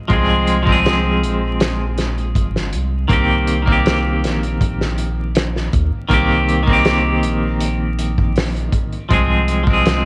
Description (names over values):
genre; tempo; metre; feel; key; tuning
trip hop; 80 BPM; 4/4; straight; C minor; A4 = 440 Hz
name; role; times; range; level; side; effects
clean electric guitar; accompaniment; 0.0-10.1 s; Eb3 to Ab4; -20 LUFS; equal; tremolo, cassette tape
round analog bass; bass; 0.1-10.1 s; G1 to Eb2; -23 LUFS; equal; none
loose indie drum kit; drums; 0.1-10.0 s; hi-hat, kick drum, snare drum; -22 LUFS; equal; cassette tape
room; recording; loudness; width
small room reverb; home recording on cassette, vinyl crackle; -17 LUFS; mono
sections
0.0-10.1 A section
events
none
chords
0.0 Fm; 3.1 Cm7; 9.1 Fm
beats
| 0.10 0.85 1.60 2.35 | 3.10 3.85 4.60 5.35 | 6.10 6.85 7.60 8.35 | 9.10 9.85